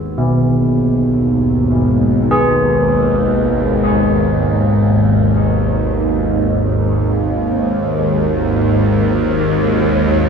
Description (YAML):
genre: dark ambient drone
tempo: free time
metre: none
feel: none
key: G# minor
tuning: A4 = 440 Hz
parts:
  - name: carillon bells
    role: arpeggios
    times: 0.0-8.4 s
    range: B2 to G#4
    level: -17 LUFS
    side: equal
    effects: analog delay
  - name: bowed-like drone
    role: drone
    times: 0.0-10.3 s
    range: G#1 to D#2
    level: -14 LUFS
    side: equal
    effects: built-in reverb, phaser
  - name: bronze singing bowl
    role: texture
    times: 0.0-10.3 s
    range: G#4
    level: -34 LUFS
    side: left 13 dB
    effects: none
room: wet plate reverb, RT60 2.5 s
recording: echo-heavy mix, studio ambience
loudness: -12 LUFS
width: side -6 dB against mid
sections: 0.0-10.3 A section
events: none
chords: 0.0 G#5